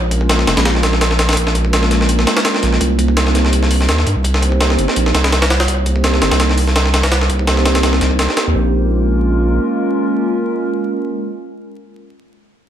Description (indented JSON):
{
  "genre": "drum and bass, jungle",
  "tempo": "167 BPM",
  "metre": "4/4",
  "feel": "swing 54% on 16ths",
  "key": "Bb dorian",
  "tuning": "A4 = 442 Hz",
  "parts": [
    { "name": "warbly tape-like pad", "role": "sustained chords", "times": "0.0-12.2 s", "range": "Ab3 to C5", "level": "-19 LUFS", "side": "right 1 dB", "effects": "chorus, built-in reverb, vintage 12-bit sampler grit" },
    { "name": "saturated sub bass", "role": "bass", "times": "0.0-9.6 s", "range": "F1 to G2", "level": "-15 LUFS", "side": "equal", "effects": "none" },
    { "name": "breakbeat sampler-style drum kit", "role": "drums", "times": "0.1-8.5 s", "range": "hi-hat, kick drum, snare drum", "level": "-16 LUFS", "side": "equal", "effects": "high-pass filter on snare, high-pass filter on hats, high-pass filter on kick, high-pass filter on room" }
  ],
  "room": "light reverb",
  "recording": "vinyl crackle",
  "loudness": "-12 LUFS",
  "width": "side -10 dB against mid",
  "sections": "0.0-8.6 A section; 8.6-11.4 B section",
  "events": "filter sweep on sub bass 0.0-8.6; filter sweep on ambient pad 0.0-8.6",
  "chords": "0.0 Bbm7; 2.8 Cm7; 8.6 Bbm7",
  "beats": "0.29 0.65 1.01 | 1.37 1.73 2.09 2.44 | 2.80 3.16 3.52 3.88 | 4.24 4.60 4.96 5.32 | 5.68 6.04 6.40 6.76 | 7.12 7.47 7.83 8.19 | 8.55 8.91 9.27 9.63 | 9.99 10.35 10.71 11.07"
}